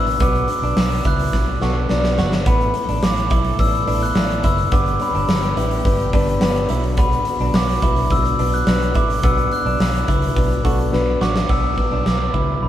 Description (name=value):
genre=piano-driven pop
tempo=106 BPM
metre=4/4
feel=straight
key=B minor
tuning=A4 = 440 Hz
part: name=glockenspiel with rubber mallets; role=melody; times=0.0-12.7 s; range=B5 to F#6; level=-23 LUFS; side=left 1 dB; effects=none
part: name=dark upright piano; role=accompaniment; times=0.0-12.7 s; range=G2 to D5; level=-24 LUFS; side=left 2 dB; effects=none
part: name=direct-recorded clean electric guitar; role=riff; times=0.0-12.7 s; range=B3 to F#4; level=-29 LUFS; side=right 5 dB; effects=none
part: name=vintage muted fingered electric bass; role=bass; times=0.0-12.7 s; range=F#1 to C#2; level=-22 LUFS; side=equal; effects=none
part: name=huge arena drum kit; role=drums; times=0.1-12.5 s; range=hi-hat, kick drum, snare drum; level=-20 LUFS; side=equal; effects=none
part: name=warm studio string section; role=sustained chords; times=2.5-11.5 s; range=D3 to A4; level=-34 LUFS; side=equal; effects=none
part: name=downlifter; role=sound effects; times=11.5-12.7 s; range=none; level=-32 LUFS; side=right 2 dB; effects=none
room=moderate stone room reverb, RT60 1.1 s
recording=band playing live in one room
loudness=-16 LUFS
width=side -12 dB against mid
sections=0.0-11.5 A section; 11.5-12.7 B section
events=drum fill 1.3-2.5, 10.9-11.5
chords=0.0 Bm; 2.5 Asus2; 4.7 G; 6.7 Bm